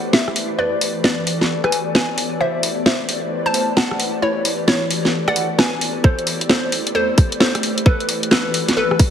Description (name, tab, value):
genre	UK garage, two-step garage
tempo	132 BPM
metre	4/4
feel	swing 64% on 16ths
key	A dorian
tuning	A4 = 440 Hz
part	ethereal airy pad	sustained chords	0.0-9.1 s	E3 to D5	-24 LUFS	left 1 dB	ensemble chorus, built-in reverb, sidechain pumping
part	hollow square pluck	melody	0.1-9.0 s	E4 to A5	-22 LUFS	equal	chorus, tape echo
part	garage drum kit	drums	0.1-9.1 s	hi-hat, rim click, snare drum	-18 LUFS	equal	none
part	electronic kick drum	drums	6.0-9.1 s	none	-12 LUFS	equal	overdrive
room	moderate plate reverb, RT60 1.3 s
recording	heavily compressed radio sound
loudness	-16 LUFS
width	side -9 dB against mid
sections	0.0-9.1 A section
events	build-up 0.0-9.1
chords	0.4 Em11; 1.5 Bm11; 2.4 Am11; 4.0 Em11; 5.1 Bm11; 6.0 Am11; 7.6 Em11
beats	0.13 | 0.59 1.04 1.50 1.95 | 2.40 2.86 3.31 3.77 | 4.22 4.68 5.13 5.59 | 6.04 6.50 6.95 7.41 | 7.86 8.31 8.77